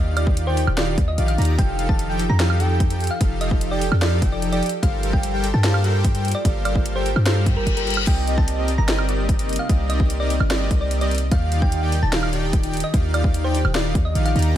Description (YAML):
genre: future bass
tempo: 148 BPM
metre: 4/4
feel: half-time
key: unclear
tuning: A4 = 441 Hz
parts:
  - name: thumb-piano-like synth pluck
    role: melody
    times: 0.0-14.5 s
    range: Bb4 to Bb5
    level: -29 LUFS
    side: equal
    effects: chorus, sidechain pumping, tape echo
  - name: ethereal airy pad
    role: sustained chords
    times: 0.0-14.6 s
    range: C3 to A4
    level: -32 LUFS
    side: equal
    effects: ensemble chorus, built-in reverb, sidechain pumping
  - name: airy dreamy lead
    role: arpeggios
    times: 0.0-14.5 s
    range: Eb5 to Bb5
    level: -32 LUFS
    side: right 1 dB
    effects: chorus, sidechain pumping
  - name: soft supersaw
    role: riff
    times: 0.0-14.5 s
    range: Eb3 to Bb5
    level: -26 LUFS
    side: equal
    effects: sidechain pumping
  - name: warm 808-style bass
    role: bass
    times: 0.0-14.5 s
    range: Eb1 to G2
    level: -21 LUFS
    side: equal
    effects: sidechain pumping
  - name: trap drum kit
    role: drums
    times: 0.2-14.5 s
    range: crash cymbal, hi-hat, snare drum, woodblock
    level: -27 LUFS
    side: right 1 dB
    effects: overdrive, studio ambience
  - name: electronic kick drum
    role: drums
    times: 0.3-14.0 s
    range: none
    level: -20 LUFS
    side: equal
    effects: overdrive, studio ambience
  - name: reverse cymbal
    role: sound effects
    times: 7.4-8.1 s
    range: none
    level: -27 LUFS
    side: left 6 dB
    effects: none
room: little or no reverb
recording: none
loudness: -18 LUFS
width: side -11 dB against mid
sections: 0.0-14.6 A section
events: reverse cymbal 7.4-8.1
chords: 0.0 Ebmaj9; 1.6 F9; 4.6 Gm11; 8.1 Cm7; 11.3 Ebmaj9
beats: 0.37 0.78 1.18 | 1.58 1.99 2.40 2.80 | 3.21 3.61 4.02 4.42 | 4.83 5.23 5.64 6.04 | 6.45 6.86 7.26 7.67 | 8.07 8.48 8.88 9.29 | 9.69 10.10 10.50 10.91 | 11.31 11.72 12.13 12.53 | 12.94 13.34 13.75 14.15 | 14.56